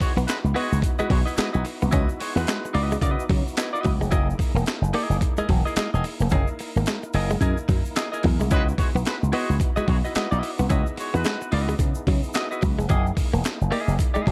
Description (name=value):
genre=funk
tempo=109 BPM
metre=4/4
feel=swing 60% on 16ths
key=C# dorian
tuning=A4 = 441 Hz
part: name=clear horn section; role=second line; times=0.0-2.7, 8.5-11.5 s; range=G#3 to C#5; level=-33 LUFS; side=equal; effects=none
part: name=tonewheel organ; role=sustained chords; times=0.0-14.3 s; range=A#3 to A#4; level=-39 LUFS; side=equal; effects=none
part: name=direct-recorded clean electric guitar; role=riff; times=0.0-14.3 s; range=F#3 to C#4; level=-31 LUFS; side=equal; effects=none
part: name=breakbeat sampler-style drum kit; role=drums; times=0.0-14.3 s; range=handclaps, hi-hat, kick drum, snare drum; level=-27 LUFS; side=equal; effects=none
part: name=tube shaker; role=percussion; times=0.0-14.3 s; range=none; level=-47 LUFS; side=equal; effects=none
part: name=slap bass with an envelope filter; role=bass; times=0.2-14.3 s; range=E1 to C#3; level=-26 LUFS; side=equal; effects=none
part: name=clean electric guitar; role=accompaniment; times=0.5-14.3 s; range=A#3 to D#5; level=-32 LUFS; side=equal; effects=spring reverb
room=little or no reverb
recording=none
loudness=-23 LUFS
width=mono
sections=0.0-14.3 A section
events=none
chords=0.0 C#m11; 4.1 F#13; 8.5 C#m11; 12.9 F#13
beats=0.28 0.83 1.38 | 1.93 2.48 3.03 3.57 | 4.12 4.67 5.22 5.77 | 6.32 6.87 7.41 7.96 | 8.51 9.06 9.61 10.15 | 10.70 11.25 11.80 12.35 | 12.90 13.45 13.99